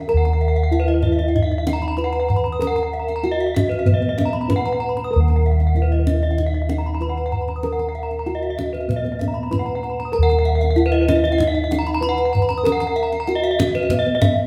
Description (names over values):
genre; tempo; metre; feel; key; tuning
Balinese gamelan; 96 BPM; 4/4; straight; Eb pelog; A4 = 440 Hz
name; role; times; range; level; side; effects
gamelan-type bronze metallophone; melody; 0.0-14.5 s; Cb4 to Cb5; -25 LUFS; equal; none
gamelan-type bronze metallophone; arpeggios; 0.0-14.2 s; Cb5 to Bb5; -28 LUFS; equal; none
gamelan-type bossed gongs; bass; 0.0-14.5 s; Eb2 to Bb4; -24 LUFS; equal; none
gamelan-type bronze metallophone; arpeggios; 0.1-14.3 s; Cb5 to Eb6; -31 LUFS; equal; none
kendang; percussion; 0.3-14.4 s; none; -26 LUFS; equal; none
room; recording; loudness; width
wet large studio reverb, RT60 1.2 s; band playing live in one room; -20 LUFS; mono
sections
0.1-14.5 A section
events
none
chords
none